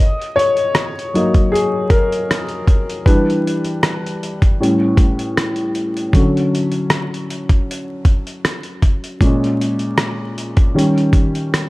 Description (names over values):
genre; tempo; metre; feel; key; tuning
lo-fi hip hop; 78 BPM; 4/4; swing 55% on 16ths; unclear; A4 = 441 Hz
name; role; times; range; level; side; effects
dark upright piano; accompaniment; 0.0-11.7 s; A2 to D#5; -17 LUFS; left 1 dB; cassette tape
dusty soul sampler-style drum kit; drums; 0.2-11.7 s; hi-hat, kick drum, rim click; -15 LUFS; equal; none
room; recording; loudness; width
little or no reverb; vinyl crackle; -14 LUFS; side -20 dB against mid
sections
0.0-11.7 A section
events
upright piano solo 0.0-11.7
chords
0.0 F#6; 3.1 Em7; 4.6 A7; 6.1 Dmaj7; 9.2 A#m7; 10.7 D#7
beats
0.75 1.52 2.29 | 3.06 3.83 4.59 5.36 | 6.13 6.90 7.67 8.44 | 9.21 9.98 10.75 11.52